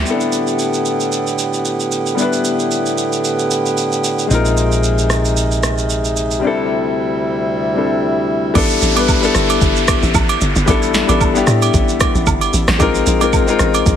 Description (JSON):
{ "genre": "amapiano", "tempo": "113 BPM", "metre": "4/4", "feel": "swing 55% on 16ths", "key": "A minor", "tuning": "A4 = 439 Hz", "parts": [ { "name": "clear grand piano", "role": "accompaniment", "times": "0.0-14.0 s", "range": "G3 to B4", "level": "-18 LUFS", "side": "left 5 dB", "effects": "none" }, { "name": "hand-pumped harmonium", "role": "sustained chords", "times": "0.0-8.5 s", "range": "D2 to G4", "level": "-18 LUFS", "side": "right 1 dB", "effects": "sidechain pumping" }, { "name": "hollow log drum bass", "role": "bass", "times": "0.0, 8.6-14.0 s", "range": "G1 to A2", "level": "-18 LUFS", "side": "right 1 dB", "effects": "none" }, { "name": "deep house drum kit", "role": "drums", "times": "0.1-14.0 s", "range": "kick drum, rim click, shaker, snare drum", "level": "-19 LUFS", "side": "right 1 dB", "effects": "none" }, { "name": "hollow-body short-scale fingered electric bass", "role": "bass", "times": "4.3-6.4 s", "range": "Bb1", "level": "-17 LUFS", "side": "right 1 dB", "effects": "none" }, { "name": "agogo bells and woodblock", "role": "percussion", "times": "8.6-13.9 s", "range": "none", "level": "-22 LUFS", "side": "right 10 dB", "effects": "none" }, { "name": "downlifter", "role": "sound effects", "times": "8.6-12.8 s", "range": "none", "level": "-22 LUFS", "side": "right 1 dB", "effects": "none" } ], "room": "light reverb", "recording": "heavily compressed radio sound", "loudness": "-13 LUFS", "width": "side -9 dB against mid", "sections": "0.1-8.6 A section; 8.6-14.0 B section", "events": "drop 8.6-14.0", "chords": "0.1 A9sus4; 4.3 Bb9sus4; 6.4 D9sus4; 8.6 A9sus4; 12.8 Bb9sus4" }